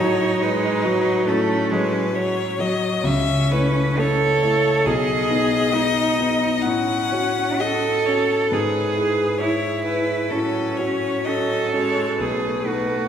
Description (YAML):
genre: classical, slow romantic movement for piano quartet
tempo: 60-70 BPM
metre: 4/4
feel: rubato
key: unclear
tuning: A4 = 442 Hz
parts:
  - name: clear violin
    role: melody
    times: 0.0-13.1 s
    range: A4 to F#5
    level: -25 LUFS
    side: left 4 dB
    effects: none
  - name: clear cello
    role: second line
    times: 0.0-13.1 s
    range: C#4 to A4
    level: -22 LUFS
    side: right 3 dB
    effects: none
  - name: rich viola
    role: accompaniment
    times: 0.0-13.1 s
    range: E3 to A3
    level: -28 LUFS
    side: right 2 dB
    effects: none
  - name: warm concert grand piano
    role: accompaniment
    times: 0.0-13.1 s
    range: B1 to D#5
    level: -23 LUFS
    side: left 2 dB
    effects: none
room: wet church reverb, RT60 2.4 s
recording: recorded in a church or concert hall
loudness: -18 LUFS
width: side -8 dB against mid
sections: 0.0-13.1 A section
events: none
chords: 0.0 F#m/A; 3.0 A/C#; 4.9 G#m/B; 6.6 F#m/A; 8.5 E/G#; 10.3 F#m/A; 12.2 B7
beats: 0.41 1.27 2.15 | 3.03 3.97 4.86 5.73 | 6.64 7.60 8.52 9.40 | 10.30 11.26 12.19